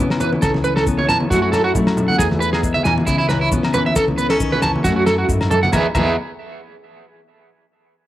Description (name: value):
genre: highlife guitar band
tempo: 136 BPM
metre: 4/4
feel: swing 54% on 16ths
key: E major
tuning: A4 = 441 Hz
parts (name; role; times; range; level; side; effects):
- fingerpicked steel-string acoustic guitar; accompaniment; 0.0-6.2 s; E2 to G#4; -21 LUFS; left 3 dB; cassette tape, plate reverb
- mellow tonewheel organ; sustained chords; 0.0-5.9 s; E4 to E5; -32 LUFS; equal; slow rotary speaker, cassette tape, plate reverb
- upright bass; bass; 0.0-6.2 s; C#2 to F#3; -24 LUFS; equal; none
- cloth-damped thuddy drum kit; drums; 0.1-6.1 s; crash cymbal, kick drum, snare drum; -24 LUFS; equal; none
- agogo bells; percussion; 0.1-6.1 s; none; -30 LUFS; left 5 dB; none
- electric guitar at the edge of break-up; arpeggios; 0.2-6.2 s; E4 to A5; -19 LUFS; right 3 dB; tremolo, cassette tape, tape echo, plate reverb
- congas; percussion; 0.2-6.2 s; none; -25 LUFS; right 1 dB; none
- maracas; percussion; 0.2-6.2 s; none; -32 LUFS; left 5 dB; none
room: light reverb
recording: home recording on cassette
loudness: -15 LUFS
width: side -14 dB against mid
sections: 0.0-5.7 A section; 5.7-7.5 B section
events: none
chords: 0.4 Aadd9/C#; 1.3 F#m7; 2.2 E; 3.1 C#m7; 4.0 Aadd9/C#; 4.8 F#m7; 5.7 E